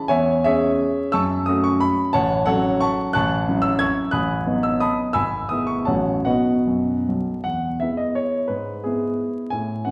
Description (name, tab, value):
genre	classical, romantic triple-time dance for piano with dotted rhythms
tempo	138-196 BPM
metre	3/4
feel	rubato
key	E major from 3.2 s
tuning	A4 = 440 Hz
part	warm grand piano	solo	0.0-9.9 s	G#1 to G#6	-21 LUFS	equal	none
room	wet recital hall reverb, RT60 1.3 s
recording	heard from further back in the room, vinyl crackle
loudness	-21 LUFS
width	mono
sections	0.0-7.5 A section; 7.5-9.9 B section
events	none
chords	0.1 C#m/E; 1.1 F#m; 2.1 F#m/A; 3.2 F#m7/A; 4.1 B7/A; 5.2 E/G#; 5.9 F#m/A; 6.3 B; 7.5 E; 8.5 E/G#